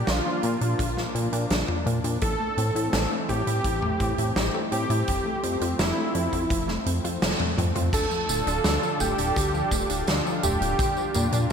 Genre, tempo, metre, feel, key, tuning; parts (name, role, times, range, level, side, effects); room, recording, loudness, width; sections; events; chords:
synthwave; 84 BPM; 4/4; straight; A4 = 440 Hz
wide unison lead; melody; 0.0-11.4 s; E4 to A4; -29 LUFS; right 1 dB; ping-pong delay
lush unison pad; sustained chords; 0.0-11.5 s; D3 to A4; -32 LUFS; equal; chorus, sidechain pumping
analog pluck; arpeggios; 0.0-11.5 s; D3 to F4; -34 LUFS; left 2 dB; chorus, digital delay
chorused synth bass; bass; 0.0-11.5 s; D1 to Bb2; -27 LUFS; equal; sidechain pumping
huge arena drum kit; drums; 0.1-11.5 s; crash cymbal, hi-hat, snare drum, tambourine, toms; -28 LUFS; right 1 dB; gated reverb
kick drum; drums; 0.8-10.9 s; -32 LUFS; equal
FM electric piano with soft pad layer; second line; 7.9-11.4 s; G5 to A5; -34 LUFS; right 3 dB; chorus, phaser, vintage 12-bit sampler grit
moderate lush hall reverb, RT60 2.2 s; bright 1980s-style digital production; -22 LUFS; side -7 dB against mid
0.0-7.9 A section; 7.9-11.5 B section
band accent 7.2-7.6; drum fill 7.4-7.9
0.0 Bb; 2.2 Am; 5.1 F; 7.9 Dm; 10.8 Bb